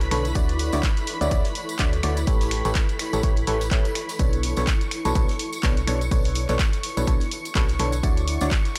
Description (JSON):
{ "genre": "piano house", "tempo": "125 BPM", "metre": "4/4", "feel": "swing 57% on 16ths", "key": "B minor", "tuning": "A4 = 439 Hz", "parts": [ { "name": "analog string pad", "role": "sustained chords", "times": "0.0-8.8 s", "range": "B4 to C#6", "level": "-38 LUFS", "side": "equal", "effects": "ensemble chorus, sidechain pumping" }, { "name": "solid FM bass", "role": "bass", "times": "0.0-8.5 s", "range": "A1 to D2", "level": "-28 LUFS", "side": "equal", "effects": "sidechain pumping" }, { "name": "punchy analog drum machine", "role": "drums", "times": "0.0-8.8 s", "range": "finger snaps, handclaps, hi-hat", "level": "-33 LUFS", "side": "equal", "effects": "none" }, { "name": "snare drum and tambourine", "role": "drums", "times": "0.0-8.8 s", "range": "none", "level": "-45 LUFS", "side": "equal", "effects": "none" }, { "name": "tambourine", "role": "percussion", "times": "0.0-8.7 s", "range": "none", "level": "-43 LUFS", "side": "equal", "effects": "none" }, { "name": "granular cloud pad", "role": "texture", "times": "0.0-8.8 s", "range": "E4 to C#6", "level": "-37 LUFS", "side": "equal", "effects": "built-in reverb, sidechain pumping" }, { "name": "barking FM electric piano", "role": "riff", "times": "0.1-8.5 s", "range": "B2 to D5", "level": "-31 LUFS", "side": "equal", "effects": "phaser, sidechain pumping, low-pass filter, tape echo" }, { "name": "electronic kick drum", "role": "drums", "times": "0.4-8.6 s", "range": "none", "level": "-25 LUFS", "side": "equal", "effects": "none" } ], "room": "small room ambience", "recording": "dry, gritty hardware recording, transformer saturation", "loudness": "-23 LUFS", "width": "mono", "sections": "0.0-8.8 A section", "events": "none", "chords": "0.4 Dmaj9; 2.3 A9; 4.2 Bm9; 8.0 Dmaj9", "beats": "| 0.35 0.83 1.31 1.79 | 2.27 2.75 3.23 3.71 | 4.19 4.67 5.15 5.63 | 6.11 6.59 7.07 7.55 | 8.03 8.51" }